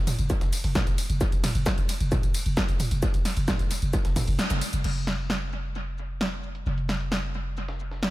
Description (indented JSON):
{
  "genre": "driving peak-time techno",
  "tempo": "132 BPM",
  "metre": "4/4",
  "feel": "straight",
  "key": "unclear",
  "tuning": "A4 = 445 Hz",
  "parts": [
    { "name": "growling 808-style bass", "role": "bass", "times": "0.0-8.1 s", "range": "F1", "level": "-29 LUFS", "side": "equal", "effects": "tube saturation, sidechain pumping, low-pass filter" },
    { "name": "breakbeat sampler-style drum kit", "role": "drums", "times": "0.1-8.1 s", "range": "hi-hat, shaker, snare drum", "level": "-42 LUFS", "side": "equal", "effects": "sidechain pumping on perc, high-pass filter on perc, low-pass filter on perc, sidechain pumping on hats, high-pass filter on hats, low-pass filter on hats, high-pass filter on snare, low-pass filter on snare, high-pass filter on room, low-pass filter on room" },
    { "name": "punchy analog drum machine", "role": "drums", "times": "0.1-8.1 s", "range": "crash cymbal, hi-hat, ride cymbal, snare drum, tambourine, toms", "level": "-29 LUFS", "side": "equal", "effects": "dub echo" },
    { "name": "electronic kick drum", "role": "drums", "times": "0.3-4.3 s", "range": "none", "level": "-26 LUFS", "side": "equal", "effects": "distortion" }
  ],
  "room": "digital ambience",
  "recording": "echo-heavy mix",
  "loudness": "-24 LUFS",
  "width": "side -17 dB against mid",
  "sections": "0.0-4.8 A section; 4.8-8.1 B section",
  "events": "drop 0.0-4.8; kick drops out 4.4-4.8; band accent 4.4",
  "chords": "none",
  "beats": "0.30 0.76 | 1.21 1.66 2.12 2.57 | 3.03 3.48 3.94 4.39 | 4.84 5.30 5.75 6.21 | 6.66 7.12 7.57 8.03"
}